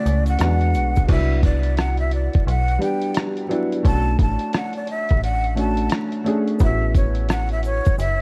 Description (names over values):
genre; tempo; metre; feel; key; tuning
lo-fi hip hop; 87 BPM; 4/4; swing 60% on 16ths; unclear; A4 = 440 Hz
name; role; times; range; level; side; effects
breathy mellow jazz flute; melody; 0.0-8.2 s; C#5 to A5; -29 LUFS; equal; dub echo
felt-muted upright piano; accompaniment; 0.0-8.2 s; C#3 to G#4; -27 LUFS; equal; cassette tape, dub echo
metallic FM bass; bass; 0.1-8.2 s; F#1 to E2; -23 LUFS; equal; none
dusty soul sampler-style drum kit; drums; 0.1-8.2 s; crash cymbal, hi-hat, kick drum, rim click; -22 LUFS; equal; none
egg shaker; percussion; 0.1-1.1, 6.6-8.2 s; none; -53 LUFS; equal; none
room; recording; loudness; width
studio ambience; echo-heavy mix, vinyl crackle; -20 LUFS; mono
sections
0.0-1.1 A section; 1.1-8.2 B section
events
none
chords
0.4 E9; 1.1 Cmaj9#11; 3.8 Bm9 (rootless); 6.6 A69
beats
0.40 | 1.09 1.78 2.47 3.16 | 3.85 4.54 5.23 5.92 | 6.61 7.30 7.99